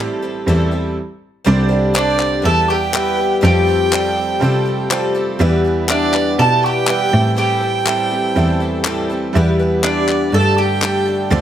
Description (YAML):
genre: indie folk with a building arrangement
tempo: 122 BPM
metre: 4/4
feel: straight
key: unclear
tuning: A4 = 440 Hz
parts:
  - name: bright concert grand piano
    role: accompaniment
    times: 0.0-11.4 s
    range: F1 to G5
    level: -22 LUFS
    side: right 6 dB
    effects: none
  - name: picked twelve-string acoustic guitar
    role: accompaniment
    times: 0.0-11.4 s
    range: A2 to C5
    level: -22 LUFS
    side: left 4 dB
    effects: none
  - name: rich cello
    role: bass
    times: 0.5-11.4 s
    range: C2 to C3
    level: -18 LUFS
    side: equal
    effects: none
  - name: hand-pumped harmonium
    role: sustained chords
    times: 1.5-11.4 s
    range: D3 to G4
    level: -27 LUFS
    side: right 1 dB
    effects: none
  - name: mandolin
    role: melody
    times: 2.0-11.3 s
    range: D4 to A4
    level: -20 LUFS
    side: left 2 dB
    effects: none
  - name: warm fiddle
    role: second line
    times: 2.0-11.3 s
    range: D5 to A5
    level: -21 LUFS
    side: right 5 dB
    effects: none
  - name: group handclap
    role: percussion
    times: 2.0-10.9 s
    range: none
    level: -20 LUFS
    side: left 4 dB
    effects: none
room: moderate large studio reverb, RT60 1.1 s, studio ambience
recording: none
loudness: -14 LUFS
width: side -10 dB against mid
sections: 0.0-1.5 A section; 1.5-11.4 B section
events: build-up 0.0-1.5; stop 1.0-1.5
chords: 0.0 Am7; 1.5 Csus2; 2.5 Em; 3.4 Fadd9; 5.4 Em; 7.1 Am7; 9.3 Em; 10.3 Gsus2